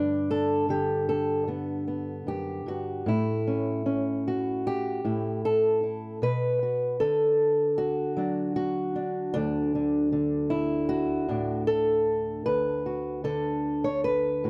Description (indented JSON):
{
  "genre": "folk, solo fingerstyle acoustic guitar",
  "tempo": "76 BPM",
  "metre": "4/4",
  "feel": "straight",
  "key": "D major",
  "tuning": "A4 = 440 Hz",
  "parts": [
    { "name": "fingerpicked old ladder-braced acoustic guitar", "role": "solo", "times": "0.0-14.5 s", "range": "D2 to C#5", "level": "-27 LUFS", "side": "equal", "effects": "none" }
  ],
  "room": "light reverb",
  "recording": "dry, close 1970s-style studio recording",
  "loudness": "-27 LUFS",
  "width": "mono",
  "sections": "0.0-3.1 A section; 3.1-14.5 B section",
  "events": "none",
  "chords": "0.0 Gadd9; 3.1 A7; 6.2 Bm7; 9.3 D6",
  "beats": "0.68 1.47 2.27 | 3.07 3.86 4.65 5.44 | 6.22 7.00 7.78 8.56 | 9.34 10.12 10.89 11.67 | 12.46 13.25 14.04"
}